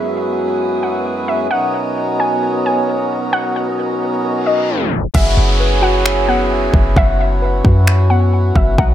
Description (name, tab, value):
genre	hip hop, atmospheric cloud-rap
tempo	132 BPM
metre	4/4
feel	half-time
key	unclear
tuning	A4 = 440 Hz
part	warbly dusty pluck	melody	0.0-8.9 s	D#5 to G#5	-20 LUFS	left 1 dB	chorus, ping-pong delay
part	pedal harmonium	sustained chords	0.0-8.9 s	F#2 to B4	-18 LUFS	right 1 dB	sidechain pumping
part	wind-like tuned noise texture	texture	0.0-5.1 s	B3 to D#6	-29 LUFS	equal	built-in reverb
part	reverse cymbal and downlifter	sound effects	4.4-8.8 s	none	-25 LUFS	left 1 dB	none
part	muted felt-like synth keys	arpeggios	5.1-8.9 s	B3 to A#5	-23 LUFS	left 4 dB	chorus, ping-pong delay
part	clean 808-style bass	bass	5.1-8.9 s	F#1 to F#2	-14 LUFS	equal	none
part	trap drum kit	drums	5.1-8.9 s	crash cymbal, finger snaps, kick drum	-16 LUFS	equal	none
room	light reverb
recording	tape stop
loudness	-13 LUFS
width	side -11 dB against mid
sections	0.0-5.1 A section; 5.1-8.9 B section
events	reverse cymbal 4.4-5.1; tape stop 4.7-5.1; hi-hats muted 5.1-8.9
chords	0.0 F#7sus4; 1.5 Bmaj7; 5.1 F#7sus4